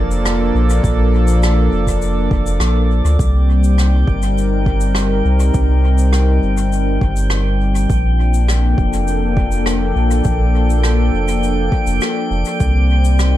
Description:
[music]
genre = ambient dub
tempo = 102 BPM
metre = 4/4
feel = straight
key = C dorian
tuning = A4 = 440 Hz
[part]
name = warm analog pad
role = sustained chords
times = 0.0-13.4 s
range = F3 to D5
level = -19 LUFS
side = left 1 dB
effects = chorus
[part]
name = warm sub bass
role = bass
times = 0.0-13.4 s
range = F1 to D2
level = -15 LUFS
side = equal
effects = none
[part]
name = drifting glass-harmonics texture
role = texture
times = 0.0-13.4 s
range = D5 to G5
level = -26 LUFS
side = left 2 dB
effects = chorus, built-in reverb
[part]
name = shaker and rim click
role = drums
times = 0.1-13.3 s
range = none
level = -26 LUFS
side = equal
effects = dub echo
[part]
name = electronic kick drum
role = drums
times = 0.8-12.7 s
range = none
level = -19 LUFS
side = equal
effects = overdrive
[sound]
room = little or no reverb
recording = echo-heavy mix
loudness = -13 LUFS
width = side -14 dB against mid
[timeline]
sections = 0.0-3.2 A section; 3.2-13.4 B section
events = none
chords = 0.0 Bbmaj7; 3.2 Cm9; 7.9 Bbmaj7; 12.6 Cm9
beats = 0.25 | 0.84 1.43 2.02 2.60 | 3.19 3.78 4.37 4.96 | 5.54 6.13 6.72 7.31 | 7.90 8.49 9.07 9.66 | 10.25 10.84 11.43 12.02 | 12.60 13.19

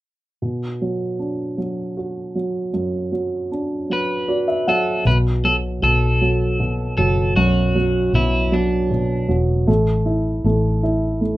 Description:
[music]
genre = pop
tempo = 52 BPM (dotted quarters)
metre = 6/8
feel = straight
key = B minor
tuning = A4 = 436 Hz
[part]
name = dark baby grand piano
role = accompaniment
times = 0.4-11.4 s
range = F#2 to F#5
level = -20 LUFS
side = right 1 dB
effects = none
[part]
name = electric guitar at the edge of break-up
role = melody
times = 3.9-9.4 s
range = D4 to B4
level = -22 LUFS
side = equal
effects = none
[part]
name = vintage muted fingered electric bass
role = bass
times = 5.1-11.4 s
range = E1 to B1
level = -20 LUFS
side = left 1 dB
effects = none
[sound]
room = light reverb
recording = rough home demo mix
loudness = -17 LUFS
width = side -17 dB against mid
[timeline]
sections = 0.4-5.1 A section; 5.1-11.4 B section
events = grand piano fill 3.9-5.1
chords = 0.4 Bm; 5.1 B7(no3); 9.7 A5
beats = | 0.43 1.59 | 2.75 3.90 | 5.06 6.22 | 7.37 8.53 | 9.68 10.84

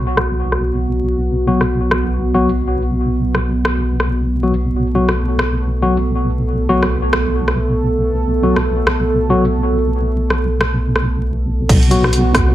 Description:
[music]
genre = deep dubstep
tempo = 138 BPM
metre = 4/4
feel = swing 60% on 16ths, half-time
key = unclear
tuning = A4 = 439 Hz
[part]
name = dark analog pad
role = sustained chords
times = 0.0-12.5 s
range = B3 to A4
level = -20 LUFS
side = right 2 dB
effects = chorus
[part]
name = deep soft wobble bass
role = bass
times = 0.0-12.5 s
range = B1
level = -18 LUFS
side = equal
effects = chorus
[part]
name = dubstep drum kit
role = drums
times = 0.2-12.5 s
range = crash cymbal, hi-hat, rim click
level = -19 LUFS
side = equal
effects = low-pass filter on hats, low-pass filter on snare, low-pass filter on cymbals, low-pass filter on room
[part]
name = tine electric piano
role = stabs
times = 1.5-12.0 s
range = F#3 to F#4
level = -19 LUFS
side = left 2 dB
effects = dub echo
[part]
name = electronic kick drum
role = drums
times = 11.7-12.5 s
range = none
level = -13 LUFS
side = equal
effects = none
[sound]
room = light reverb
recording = vinyl crackle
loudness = -14 LUFS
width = side -13 dB against mid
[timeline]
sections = 0.0-11.7 A section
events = filter sweep on drum 0.0-11.7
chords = 0.0 B5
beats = 0.39 0.82 | 1.26 1.69 2.13 2.56 | 3.00 3.43 3.87 4.30 | 4.74 5.17 5.61 6.04 | 6.48 6.91 7.35 7.78 | 8.21 8.65 9.09 9.52 | 9.96 10.39 10.82 11.26 | 11.69 12.13

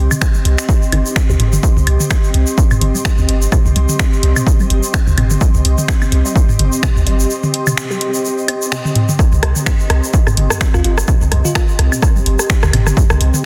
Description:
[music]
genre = minimal techno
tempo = 127 BPM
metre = 4/4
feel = swing 56% on 16ths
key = C minor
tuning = A4 = 442 Hz
[part]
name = punchy sub bass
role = bass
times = 0.0-13.3 s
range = G1 to D2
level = -16 LUFS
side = equal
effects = sidechain pumping
[part]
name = ethereal airy pad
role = texture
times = 0.0-13.5 s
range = C4 to C6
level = -25 LUFS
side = equal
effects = ensemble chorus, built-in reverb, sidechain pumping
[part]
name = resonant blip pluck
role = riff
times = 0.1-13.0 s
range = G2 to C4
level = -28 LUFS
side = equal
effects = none
[part]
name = techno drum kit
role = percussion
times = 0.1-13.4 s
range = claves, rim click, toms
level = -21 LUFS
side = equal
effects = soft clipping on snare, dub echo
[part]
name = tube shaker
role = percussion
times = 0.1-13.4 s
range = none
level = -27 LUFS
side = equal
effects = none
[part]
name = electronic kick drum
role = drums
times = 0.2-13.1 s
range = none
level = -16 LUFS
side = equal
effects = none
[part]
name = punchy analog drum machine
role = drums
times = 0.2-13.3 s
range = finger snaps, hi-hat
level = -24 LUFS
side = equal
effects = soft clipping on snare
[part]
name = bell-like FM electric piano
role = melody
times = 10.7-11.6 s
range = F4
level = -27 LUFS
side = equal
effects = chorus, dub echo
[sound]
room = light reverb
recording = dense, heavily limited modern master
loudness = -14 LUFS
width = mono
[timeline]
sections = 0.0-13.5 A section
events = break 7.3-9.2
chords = 0.0 Cm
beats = 0.21 0.69 1.16 | 1.63 2.10 2.58 3.05 | 3.52 4.00 4.47 4.94 | 5.41 5.88 6.36 6.83 | 7.30 7.77 8.25 8.72 | 9.19 9.66 10.14 10.61 | 11.08 11.55 12.03 12.50 | 12.97 13.44

